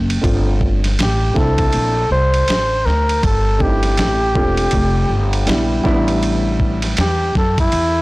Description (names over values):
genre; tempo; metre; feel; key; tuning
hip hop, jazz-hop; 80 BPM; 4/4; swing 59% on 16ths; unclear; A4 = 440 Hz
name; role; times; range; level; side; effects
upright bass; bass; 0.0-8.0 s; E1 to F#2; -18 LUFS; equal; none
dusty soul sampler-style drum kit; drums; 0.1-7.9 s; hi-hat, kick drum, ride cymbal, snare drum; -20 LUFS; equal; overdrive
dark concert grand piano; accompaniment; 0.2-7.1 s; G3 to F4; -21 LUFS; equal; none
mellow flugelhorn; melody; 1.0-8.0 s; E4 to C5; -19 LUFS; equal; analog delay
room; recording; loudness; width
studio reverb; blown-out, overdriven recording, overdrive; -14 LUFS; side -21 dB against mid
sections
0.0-8.0 A section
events
none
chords
0.2 G9sus4; 5.9 A9sus4